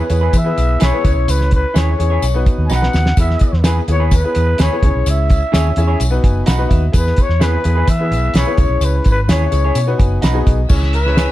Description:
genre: uptempo 1960s-style soul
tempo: 127 BPM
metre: 4/4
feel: straight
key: E major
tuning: A4 = 440 Hz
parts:
  - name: growling trumpet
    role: melody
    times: 0.0-11.3 s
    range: B4 to G#5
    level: -20 LUFS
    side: left 2 dB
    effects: slapback echo
  - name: clear upright piano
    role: accompaniment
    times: 0.0-11.3 s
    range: B3 to G#5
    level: -23 LUFS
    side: left 2 dB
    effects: none
  - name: vintage muted fingered electric bass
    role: bass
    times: 0.1-11.3 s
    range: F#1 to E3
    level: -16 LUFS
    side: equal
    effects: none
  - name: cloth-damped thuddy drum kit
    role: drums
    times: 0.1-11.3 s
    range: crash cymbal, hi-hat, kick drum, snare drum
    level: -16 LUFS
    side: equal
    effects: none
  - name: tambourine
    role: percussion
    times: 0.1-11.3 s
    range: none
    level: -33 LUFS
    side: left 5 dB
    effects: none
  - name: electric guitar through a small old amp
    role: stabs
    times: 0.2-11.3 s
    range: D#4 to C#5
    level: -25 LUFS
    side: right 3 dB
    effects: slapback echo
  - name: warm symphonic string section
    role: second line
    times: 10.7-11.3 s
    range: E5 to E6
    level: -25 LUFS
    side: left 1 dB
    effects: none
room: little or no reverb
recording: dark, warm production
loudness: -12 LUFS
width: side -15 dB against mid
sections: 0.0-10.7 A section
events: drum fill 2.7-3.2; upright piano fill 6.0-6.9, 9.8-10.7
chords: 0.0 E; 1.1 C#m; 2.2 B; 3.2 E; 4.8 C#m; 6.0 B; 6.9 E; 8.6 C#m; 9.8 B; 10.7 C#m

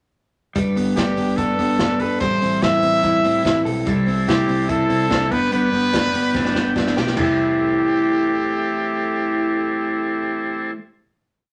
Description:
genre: jangly indie pop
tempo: 145 BPM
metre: 4/4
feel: straight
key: C major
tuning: A4 = 440 Hz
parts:
  - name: picked twelve-string acoustic guitar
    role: accompaniment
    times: 0.5-10.8 s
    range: G2 to B4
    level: -33 LUFS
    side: equal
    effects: none
  - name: electric guitar through a small old amp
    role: arpeggios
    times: 0.6-10.8 s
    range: E3 to A4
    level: -23 LUFS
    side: equal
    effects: none
  - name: vintage muted picked electric bass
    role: bass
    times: 0.6-10.7 s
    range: G1 to C3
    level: -33 LUFS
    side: equal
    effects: none
  - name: vintage drum kit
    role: drums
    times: 0.6-7.3 s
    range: crash cymbal, hi-hat, kick drum, snare drum, toms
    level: -28 LUFS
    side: equal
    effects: none
  - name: bright trumpet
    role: melody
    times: 1.0-10.7 s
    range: G4 to E5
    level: -24 LUFS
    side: equal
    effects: none
  - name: overdriven combo organ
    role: accompaniment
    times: 3.9-10.7 s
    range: B3 to B5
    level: -29 LUFS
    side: equal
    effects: none
room: moderate studio reverb, RT60 0.6 s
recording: none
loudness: -19 LUFS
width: mono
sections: 0.6-7.2 pre-chorus; 7.2-10.5 final chord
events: transistor combo organ fill 5.9-7.2; drum fill 6.3-7.2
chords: 0.6 Gadd9; 2.2 Am7; 3.9 C6; 5.3 G; 7.2 C6

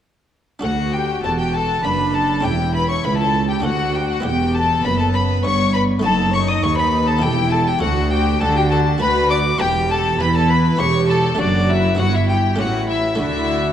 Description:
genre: classical, baroque-style concerto movement with solo episodes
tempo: 100 BPM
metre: 3/4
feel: straight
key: D major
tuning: A4 = 440 Hz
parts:
  - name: rich chamber violin section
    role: melody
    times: 0.6-13.7 s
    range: D5 to D#6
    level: -25 LUFS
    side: left 5 dB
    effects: none
  - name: rich violin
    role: melody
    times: 0.6-13.7 s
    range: D5 to D#6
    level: -22 LUFS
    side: left 2 dB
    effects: none
  - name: rich chamber violin section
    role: second line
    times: 0.6-13.7 s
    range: D4 to D#5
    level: -25 LUFS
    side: left 4 dB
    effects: none
  - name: buff-stop harpsichord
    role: accompaniment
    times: 0.6-13.7 s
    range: C#2 to B4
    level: -28 LUFS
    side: equal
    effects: none
  - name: dark chamber viola section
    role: accompaniment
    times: 0.6-13.7 s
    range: B3 to G4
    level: -24 LUFS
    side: right 1 dB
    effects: none
  - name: rich chamber cello section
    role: bass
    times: 0.6-13.7 s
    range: C#2 to E3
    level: -22 LUFS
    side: right 1 dB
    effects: none
  - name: rich chamber double bass section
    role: bass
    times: 0.6-13.7 s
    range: E1 to E2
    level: -23 LUFS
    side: right 2 dB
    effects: none
room: wet concert hall reverb, RT60 1.8 s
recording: dark, warm production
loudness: -15 LUFS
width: side -10 dB against mid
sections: 0.6-13.7 A section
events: none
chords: 0.6 D; 2.4 C#dim/E; 3.6 D; 4.2 Em; 6.0 D#dim/F#; 7.2 Em; 7.8 D; 9.0 Bm/D; 9.6 Em; 10.8 C#dim/E; 11.4 D/F#; 12.0 Em7/G; 12.6 A7; 13.2 D

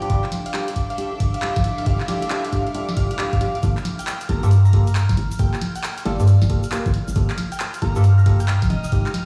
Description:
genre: UK garage, two-step garage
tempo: 136 BPM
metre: 4/4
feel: swing 64% on 16ths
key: G minor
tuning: A4 = 440 Hz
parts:
  - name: thumb-piano-like synth pluck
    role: melody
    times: 0.0-8.9 s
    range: D5 to Bb5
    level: -34 LUFS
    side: equal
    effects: chorus, phaser, digital delay
  - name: warm analog pad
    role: sustained chords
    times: 0.0-9.3 s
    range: D6 to F6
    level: -38 LUFS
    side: equal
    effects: chorus, sidechain pumping
  - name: tine electric piano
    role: stabs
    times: 0.0-9.1 s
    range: G3 to Bb4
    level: -31 LUFS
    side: equal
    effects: digital delay
  - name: punchy analog drum machine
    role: drums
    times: 0.0-9.3 s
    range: handclaps, hi-hat, snare drum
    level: -32 LUFS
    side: equal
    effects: overdrive
  - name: granular cloud pad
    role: texture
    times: 0.0-3.6 s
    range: D4 to G5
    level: -37 LUFS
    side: equal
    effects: built-in reverb, sidechain pumping
  - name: electronic kick drum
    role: drums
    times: 0.1-9.0 s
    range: none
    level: -23 LUFS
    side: equal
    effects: none
  - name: hollow knocking FM bass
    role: bass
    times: 3.6-8.8 s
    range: F1 to G2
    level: -18 LUFS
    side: equal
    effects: none
  - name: egg shaker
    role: percussion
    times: 3.6-9.1 s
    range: none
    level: -45 LUFS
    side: equal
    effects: none
room: light reverb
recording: played on a big sound system in a bare room, stone room reverb, studio ambience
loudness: -20 LUFS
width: mono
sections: 0.0-3.6 A section; 3.6-9.3 B section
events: build-up 0.0-3.6; drop 3.6-9.3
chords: 0.0 Dm9; 3.6 Gm9; 8.7 Fm9

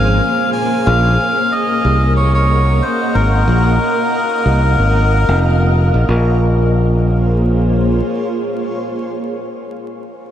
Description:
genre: ambient dub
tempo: 92 BPM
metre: 4/4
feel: swing 55% on 16ths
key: Bb minor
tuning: A4 = 440 Hz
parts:
  - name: melodica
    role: melody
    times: 0.0-5.4 s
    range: Bb4 to Ab5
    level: -18 LUFS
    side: left 1 dB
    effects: dub echo
  - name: granular cloud pad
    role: sustained chords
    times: 0.0-9.5 s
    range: F3 to Gb5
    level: -19 LUFS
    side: equal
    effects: built-in reverb
  - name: fingered electric bass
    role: bass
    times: 0.0-8.0 s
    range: F1 to C2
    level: -13 LUFS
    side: equal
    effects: none
room: light reverb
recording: vinyl crackle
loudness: -12 LUFS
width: side -10 dB against mid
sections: 0.0-6.1 A section; 6.1-8.7 B section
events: none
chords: 0.0 Bbm7; 0.9 Ebm9; 6.1 Bbm7

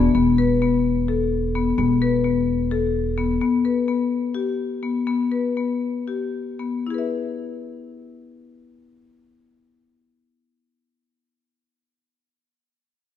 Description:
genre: contemporary instrumental, chamber music in an uneven meter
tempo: 223-257 BPM (eighths)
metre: 7/8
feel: straight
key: E major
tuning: A4 = 436 Hz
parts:
  - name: marimba with medium hard mallets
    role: arpeggios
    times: 0.0-11.8 s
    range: B3 to E5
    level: -21 LUFS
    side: left 6 dB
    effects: none
  - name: upright bass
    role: bass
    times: 0.0-3.4 s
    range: E1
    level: -24 LUFS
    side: right 4 dB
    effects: none
room: light reverb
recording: none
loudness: -20 LUFS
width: side -10 dB against mid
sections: 0.1-6.9 A section; 6.9-10.6 B section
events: slowing down 3.4-6.9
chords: 0.1 Esus4; 3.4 G; 6.9 E

